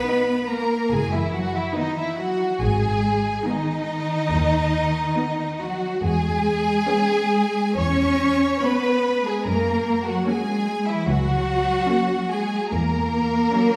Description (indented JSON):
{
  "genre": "classical, slow romantic movement for string orchestra",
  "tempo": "65-76 BPM",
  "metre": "4/4",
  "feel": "rubato",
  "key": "B major",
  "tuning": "A4 = 440 Hz",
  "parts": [
    { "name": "rich chamber violin section", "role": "melody", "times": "0.0-13.8 s", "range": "D#5 to C#6", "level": "-34 LUFS", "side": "equal", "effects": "none" },
    { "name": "rich chamber violin section", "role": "second line", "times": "0.0-13.8 s", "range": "D#4 to C#5", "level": "-26 LUFS", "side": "equal", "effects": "none" },
    { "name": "warm chamber cello section", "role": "bass", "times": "0.0-13.8 s", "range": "D#3 to C#4", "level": "-27 LUFS", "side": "equal", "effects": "none" },
    { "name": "rich studio viola section", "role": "accompaniment", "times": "0.1-13.8 s", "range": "F#3 to D#4", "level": "-31 LUFS", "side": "equal", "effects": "none" },
    { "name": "rich chamber double bass section", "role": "bass", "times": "0.9-13.4 s", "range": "F#1 to F#2", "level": "-28 LUFS", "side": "equal", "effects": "none" }
  ],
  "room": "wet scoring stage reverb, RT60 1.6 s",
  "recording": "heard from further back in the room",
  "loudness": "-22 LUFS",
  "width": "mono",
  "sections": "0.0-13.8 A section",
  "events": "none",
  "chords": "0.0 B; 2.6 G#m7; 6.0 C#m7/E; 9.5 F#; 12.7 F#7/E"
}